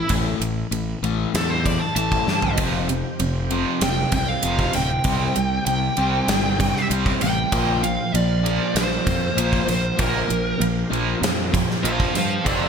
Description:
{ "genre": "hard rock", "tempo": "97 BPM", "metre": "4/4", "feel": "straight", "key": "unclear", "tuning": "A4 = 441 Hz", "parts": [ { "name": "high-gain lead guitar", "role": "melody", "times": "0.0-12.7 s", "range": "A4 to A5", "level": "-25 LUFS", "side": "right 1 dB", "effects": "distortion, ping-pong delay" }, { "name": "crunchy overdriven guitar", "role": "riff", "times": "0.0-12.7 s", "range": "F2 to C4", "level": "-26 LUFS", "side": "left 8 dB", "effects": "wide subtle chorus" }, { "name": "fuzz fingered electric bass", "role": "bass", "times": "0.1-12.7 s", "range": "D1 to G2", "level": "-26 LUFS", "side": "right 1 dB", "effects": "overdrive" }, { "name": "gated 80s drum kit", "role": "drums", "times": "0.1-12.6 s", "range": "kick drum, ride cymbal, snare drum, toms", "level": "-25 LUFS", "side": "right 1 dB", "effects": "none" }, { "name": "overdriven tonewheel organ", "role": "sustained chords", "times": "2.6-12.7 s", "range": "F3 to D5", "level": "-35 LUFS", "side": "equal", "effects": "none" }, { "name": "overdriven electric guitar", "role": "riff", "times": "2.6-12.7 s", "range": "F2 to C4", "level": "-27 LUFS", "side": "right 10 dB", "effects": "harmonic tremolo" }, { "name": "heavy high-gain guitar", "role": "riff", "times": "12.5-12.7 s", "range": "F2 to F3", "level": "-29 LUFS", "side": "right 2 dB", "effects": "none" } ], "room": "moderate lush hall reverb, RT60 1.9 s, small room reverb", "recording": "bright 1980s-style digital production", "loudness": "-19 LUFS", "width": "side -6 dB against mid", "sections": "0.0-12.7 A section", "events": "lead electric guitar solo 0.0-12.7; drum fill 2.3-2.6", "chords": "0.0 A5; 2.6 F5; 5.1 C5; 7.5 Bb5" }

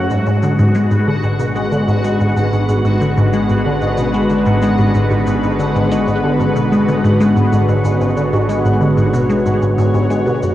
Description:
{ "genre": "ambient, sequencer-driven space music", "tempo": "93 BPM", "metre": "4/4", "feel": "straight", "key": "unclear", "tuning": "A4 = 440 Hz", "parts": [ { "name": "lush unison pad", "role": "sustained chords", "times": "0.0-10.5 s", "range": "D3 to C#5", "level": "-18 LUFS", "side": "equal", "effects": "chorus, cassette tape" }, { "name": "concert harp", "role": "arpeggios", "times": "0.0-10.5 s", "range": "C#4 to F#5", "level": "-26 LUFS", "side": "equal", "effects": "auto-pan, cassette tape, tape echo" }, { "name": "resonant blip pluck", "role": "riff", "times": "0.0-10.5 s", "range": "F#2 to G#3", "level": "-15 LUFS", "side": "equal", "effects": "phaser, cassette tape, tape echo" }, { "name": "analog drone", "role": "bass", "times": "1.2-10.5 s", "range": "F#1 to G#1", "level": "-28 LUFS", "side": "equal", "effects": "chorus" }, { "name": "bubbling stepped-filter texture", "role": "texture", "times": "0.0-10.5 s", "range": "F#4 to F#5", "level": "-24 LUFS", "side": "equal", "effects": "chorus, built-in reverb, cassette tape" }, { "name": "shaker and bongos", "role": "percussion", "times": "0.1-10.5 s", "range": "none", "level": "-31 LUFS", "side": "right 1 dB", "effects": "overdrive, cassette tape, tape echo" } ], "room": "wet spring reverb, RT60 2.6 s", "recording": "home recording on cassette", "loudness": "-12 LUFS", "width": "side -13 dB against mid", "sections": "0.0-10.5 A section", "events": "fade-in on harp 0.0-10.5", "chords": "0.1 G#dim" }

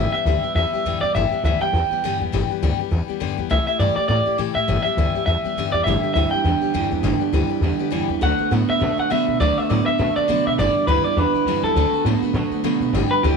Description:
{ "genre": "rock", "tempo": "204 BPM", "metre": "4/4", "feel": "swing 58% on 8ths", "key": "G major", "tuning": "A4 = 441 Hz", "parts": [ { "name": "electric guitar through a small old amp", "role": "melody", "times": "0.0-13.4 s", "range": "G4 to G5", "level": "-21 LUFS", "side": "equal", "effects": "tape echo" }, { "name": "picked steel-string acoustic guitar", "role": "accompaniment", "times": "0.0-13.4 s", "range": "G2 to G4", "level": "-25 LUFS", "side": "left 13 dB", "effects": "none" }, { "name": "upright bass", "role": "bass", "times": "0.0-13.3 s", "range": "G1 to C3", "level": "-22 LUFS", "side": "equal", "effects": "none" }, { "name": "electric guitar through a small old amp", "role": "riff", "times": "5.9-13.4 s", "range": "G2 to B3", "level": "-23 LUFS", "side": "right 14 dB", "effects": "none" } ], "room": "little or no reverb", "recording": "1960s-style stereo with parts hard left and right", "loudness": "-18 LUFS", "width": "side -5 dB against mid", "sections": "0.0-12.9 A section", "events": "none", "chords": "0.0 G6; 3.5 C6; 4.7 G6; 8.2 D6; 10.6 G6; 11.8 D6" }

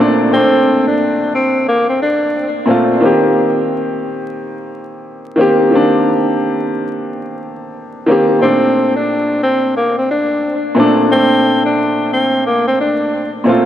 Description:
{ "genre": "hip hop", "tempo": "89 BPM", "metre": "4/4", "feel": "swing 62% on 16ths", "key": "Bb major", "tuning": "A4 = 443 Hz", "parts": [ { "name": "warm concert grand piano", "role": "accompaniment", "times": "0.0-13.7 s", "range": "Bb2 to G4", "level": "-14 LUFS", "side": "equal", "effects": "high-pass filter, low-pass filter" }, { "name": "breathy tenor saxophone", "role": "melody", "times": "0.3-2.5, 8.4-13.3 s", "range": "Bb3 to D4", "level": "-14 LUFS", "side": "equal", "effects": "high-pass filter, low-pass filter, diffuse ambient delay" } ], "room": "wet plate reverb, RT60 2.7 s", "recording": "dreamy mix soaked in reverb, vinyl crackle", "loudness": "-11 LUFS", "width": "side -11 dB against mid", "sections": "0.0-8.4 A section; 8.4-13.7 A section", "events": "none", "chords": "0.0 Bbmaj9; 3.0 Eb6; 8.4 Bbmaj9" }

